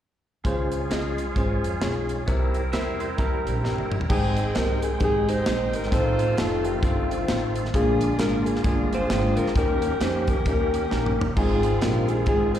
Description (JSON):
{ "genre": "uptempo gospel", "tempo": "132 BPM", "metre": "4/4", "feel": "swing 60% on 8ths", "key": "Ab major", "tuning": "A4 = 436 Hz", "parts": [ { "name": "bright tonewheel organ", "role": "sustained chords", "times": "0.4-12.6 s", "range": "C3 to G5", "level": "-31 LUFS", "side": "right 3 dB", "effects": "slow rotary speaker, overdrive, chorus vibrato" }, { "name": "upright bass", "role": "bass", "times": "0.4-12.6 s", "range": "F1 to F2", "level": "-27 LUFS", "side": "equal", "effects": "none" }, { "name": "tight funk drum kit", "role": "drums", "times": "0.4-12.6 s", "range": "crash cymbal, hi-hat, kick drum, snare drum, toms", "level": "-27 LUFS", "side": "equal", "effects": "none" }, { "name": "bell-like tine electric piano", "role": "accompaniment", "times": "0.5-12.6 s", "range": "Ab2 to G5", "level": "-28 LUFS", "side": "left 2 dB", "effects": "fast stereo tremolo, slapback echo" }, { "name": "semi-hollow electric guitar", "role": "second line", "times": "2.7-3.9 s", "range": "G4 to E5", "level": "-33 LUFS", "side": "right 5 dB", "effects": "slapback echo" }, { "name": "mellow saxophone section", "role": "melody", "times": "4.1-12.6 s", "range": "C4 to C5", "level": "-26 LUFS", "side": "left 1 dB", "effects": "slapback echo" } ], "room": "light reverb, small room ambience", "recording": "live gig heard through the venue's PA, recital hall reverb", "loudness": "-21 LUFS", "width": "side -10 dB against mid", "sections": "0.4-4.1 A section; 4.1-12.6 B section", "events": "drum fill 3.6-4.1, 10.9-11.4", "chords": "0.4 Dbmaj7; 2.3 C7; 4.1 Abmaj7; 5.9 F7; 7.7 Bb7; 9.6 Eb7; 11.4 Ab6" }